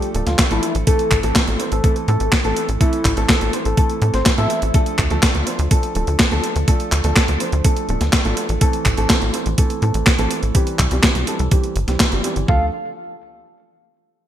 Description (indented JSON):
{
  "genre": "italo disco",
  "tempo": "124 BPM",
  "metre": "4/4",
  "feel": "straight",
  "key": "D minor",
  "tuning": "A4 = 439 Hz",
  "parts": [
    { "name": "soft octave-layered synth lead", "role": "melody", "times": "0.0-4.6, 12.5-12.7 s", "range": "E4 to F5", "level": "-24 LUFS", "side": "equal", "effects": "chorus, cassette tape, digital delay" },
    { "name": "dark grand piano", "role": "stabs", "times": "0.0-12.7 s", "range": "E3 to C5", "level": "-24 LUFS", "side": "right 2 dB", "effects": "wide subtle chorus, low-pass filter, digital delay" },
    { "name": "clean 12-bit digital drum machine", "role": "drums", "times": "0.0-12.5 s", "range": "handclaps, hi-hat, snare drum", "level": "-20 LUFS", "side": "equal", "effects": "gated reverb" },
    { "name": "tight sequencer bass", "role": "bass", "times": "0.1-12.7 s", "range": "D1 to A2", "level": "-20 LUFS", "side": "equal", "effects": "none" },
    { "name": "electronic kick drum", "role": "drums", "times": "0.4-12.6 s", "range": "none", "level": "-18 LUFS", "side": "equal", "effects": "none" }
  ],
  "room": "light reverb",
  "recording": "bright 1980s-style digital production",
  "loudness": "-15 LUFS",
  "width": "side -11 dB against mid",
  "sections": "0.0-12.5 A section; 12.5-14.3 B section",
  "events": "filter sweep on grand piano 0.0-12.5",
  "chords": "0.0 Dm; 0.9 Am; 4.7 Dm; 8.6 Am; 10.5 C; 12.5 Dm"
}